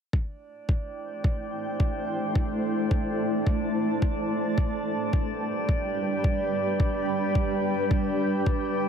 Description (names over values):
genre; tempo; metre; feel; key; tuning
organic downtempo; 108 BPM; 4/4; swing 56% on 16ths; A minor; A4 = 437 Hz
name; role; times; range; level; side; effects
granular cloud pad; sustained chords; 1.0-8.9 s; G3 to A5; -27 LUFS; equal; built-in reverb, sidechain pumping
electronic kick drum; drums; 0.1-8.6 s; none; -25 LUFS; equal; none
drifting glass-harmonics texture; texture; 0.5-8.9 s; D4 to D5; -32 LUFS; right 2 dB; chorus, built-in reverb
room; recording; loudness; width
moderate echo chamber reverb, RT60 1.7 s, digital ambience; none; -24 LUFS; side -7 dB against mid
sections
0.1-8.9 A section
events
none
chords
0.1 Am7; 4.6 G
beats
| 0.13 0.69 1.25 1.80 | 2.36 2.91 3.47 4.02 | 4.58 5.13 5.69 6.25 | 6.80 7.36 7.91 8.47